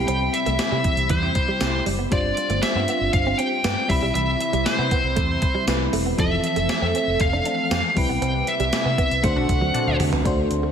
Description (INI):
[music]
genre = 1980s-style pop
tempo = 118 BPM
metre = 4/4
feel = straight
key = unclear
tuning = A4 = 440 Hz
[part]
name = high-gain lead guitar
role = melody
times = 0.0-10.0 s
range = C5 to G5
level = -24 LUFS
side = equal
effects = distortion
[part]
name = FM electric piano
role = accompaniment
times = 0.0-10.7 s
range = E3 to B5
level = -27 LUFS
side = left 2 dB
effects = chorus, slapback echo
[part]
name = phased analog pad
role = sustained chords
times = 0.0-10.7 s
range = C3 to B4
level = -30 LUFS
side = right 1 dB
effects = phaser, chorus
[part]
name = direct-recorded clean electric guitar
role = riff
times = 0.0-10.7 s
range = E3 to D4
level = -30 LUFS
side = right 5 dB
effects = ensemble chorus, slapback echo
[part]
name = vintage muted fingered electric bass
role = bass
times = 0.0-10.7 s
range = E1 to D3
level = -26 LUFS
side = equal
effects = none
[part]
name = gated 80s digital drum machine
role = drums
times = 0.1-10.6 s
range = hi-hat, kick drum, snare drum, tambourine, toms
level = -25 LUFS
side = equal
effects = gated reverb, gated reverb snare
[part]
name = funky polysynth comp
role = stabs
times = 1.2-2.0, 9.4-10.1 s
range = C4 to A4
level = -32 LUFS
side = equal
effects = chorus, slapback echo
[sound]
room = moderate scoring stage reverb, RT60 2.0 s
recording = big arena sound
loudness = -19 LUFS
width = side -8 dB against mid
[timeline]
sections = 0.0-10.3 A section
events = band accent 0.1-2.1, 8.2-10.3; drum fill 9.7-10.3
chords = 0.0 Cmaj7; 2.1 G7sus4; 3.9 Cmaj7; 6.2 Fmaj7; 8.0 Cmaj7; 9.2 D7